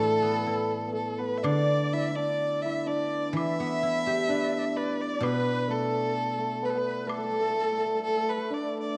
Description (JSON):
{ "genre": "chinese traditional, Chinese chamber ensemble", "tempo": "63 BPM", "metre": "2/4", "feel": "rubato", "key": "A shang mode", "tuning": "A4 = 440 Hz", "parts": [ { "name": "clear erhu", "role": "melody", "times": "0.0-9.0 s", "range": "A4 to E5", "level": "-32 LUFS", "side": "equal", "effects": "none" }, { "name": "dizi", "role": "second line", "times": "0.0-8.5 s", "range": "A4 to E5", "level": "-35 LUFS", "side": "equal", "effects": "none" }, { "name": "hammered dulcimer", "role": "second line", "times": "0.0-9.0 s", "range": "A3 to E4", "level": "-34 LUFS", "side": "equal", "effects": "none" }, { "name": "guzheng", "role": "accompaniment", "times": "0.0-8.0 s", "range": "A2 to B4", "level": "-34 LUFS", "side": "equal", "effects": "none" }, { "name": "woodblock", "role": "percussion", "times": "1.4-7.3 s", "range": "none", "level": "-42 LUFS", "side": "equal", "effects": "none" } ], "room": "moderate concert hall reverb, RT60 1.7 s", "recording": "dark, warm production", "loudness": "-28 LUFS", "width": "mono", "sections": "0.0-9.0 A section", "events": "none", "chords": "none" }